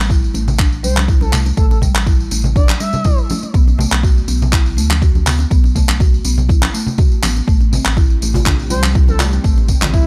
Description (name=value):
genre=afro house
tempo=122 BPM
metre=4/4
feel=swing 53% on 16ths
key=A minor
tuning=A4 = 440 Hz
part: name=warm sub bass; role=bass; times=0.0-10.1 s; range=A1 to D2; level=-19 LUFS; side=equal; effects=sidechain pumping
part: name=buzzing marimba with soft mallets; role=arpeggios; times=0.1-10.0 s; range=G3 to F#4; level=-26 LUFS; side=equal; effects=sidechain pumping, low-pass filter, tape echo
part: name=electronic kick drum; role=drums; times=0.1-10.0 s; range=none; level=-16 LUFS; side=equal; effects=none
part: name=tambourine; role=percussion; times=0.1-10.0 s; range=none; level=-30 LUFS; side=equal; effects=none
part: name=congas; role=percussion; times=0.3-9.9 s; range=none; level=-25 LUFS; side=equal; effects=none
part: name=deep house drum kit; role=drums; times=0.6-9.9 s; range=handclaps, toms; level=-21 LUFS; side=equal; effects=overdrive
part: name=expressive portamento lead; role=melody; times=0.8-3.2, 8.7-10.1 s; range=E4 to E5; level=-28 LUFS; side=equal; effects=chorus, tape echo
part: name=ethereal airy pad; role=sustained chords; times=7.9-10.1 s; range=E3 to G4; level=-32 LUFS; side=equal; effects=none
part: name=djembe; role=percussion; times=8.3-9.9 s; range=none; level=-26 LUFS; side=equal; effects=none
room=small room ambience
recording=none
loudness=-14 LUFS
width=mono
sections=0.0-10.1 A section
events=none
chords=0.0 Am; 3.5 Bm7; 7.5 Am7